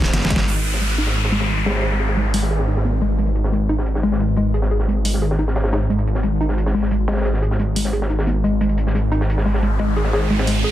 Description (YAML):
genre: dark technical drum and bass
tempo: 177 BPM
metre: 4/4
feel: straight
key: G# minor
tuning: A4 = 441 Hz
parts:
  - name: dark analog pad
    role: sustained chords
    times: 0.0-10.6 s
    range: G#3 to B4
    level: -38 LUFS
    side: right 1 dB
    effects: none
  - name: wide detuned saw bass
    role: bass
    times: 0.0-10.6 s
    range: F#1 to G#1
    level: -19 LUFS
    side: equal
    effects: chorus
  - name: crunchy breakbeat drum kit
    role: drums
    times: 0.0-10.6 s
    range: hi-hat, snare drum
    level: -28 LUFS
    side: equal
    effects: high-pass filter on hats, low-pass filter on hats, high-pass filter on snare, low-pass filter on snare, high-pass filter on room, low-pass filter on room
  - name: dubstep drum kit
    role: drums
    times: 0.0-2.4, 5.0-5.1, 7.8, 10.5 s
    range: hi-hat, ride cymbal, shaker, snare drum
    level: -23 LUFS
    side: equal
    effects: overdrive
  - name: warbly dusty pluck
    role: arpeggios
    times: 0.1-10.7 s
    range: G#3 to G#4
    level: -23 LUFS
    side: left 2 dB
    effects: chorus, sidechain pumping, digital delay
  - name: downlifter and riser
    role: sound effects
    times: 0.5-3.2, 9.2-10.7 s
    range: none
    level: -26 LUFS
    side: equal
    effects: none
room: light reverb, digital ambience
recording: dense, heavily limited modern master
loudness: -17 LUFS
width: side -13 dB against mid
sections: 0.5-10.7 A section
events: drum fill 0.0-0.5; filter sweep on synth arpeggio sound 0.5-10.7; riser 9.2-10.7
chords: 0.5 G#m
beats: 0.14 | 0.47 0.81 1.15 1.49 | 1.83 2.17 2.51 2.85 | 3.19 3.52 3.86 4.20 | 4.54 4.88 5.22 5.56 | 5.90 6.24 6.58 6.92 | 7.25 7.59 7.93 8.27 | 8.61 8.95 9.29 9.63 | 9.97 10.30 10.64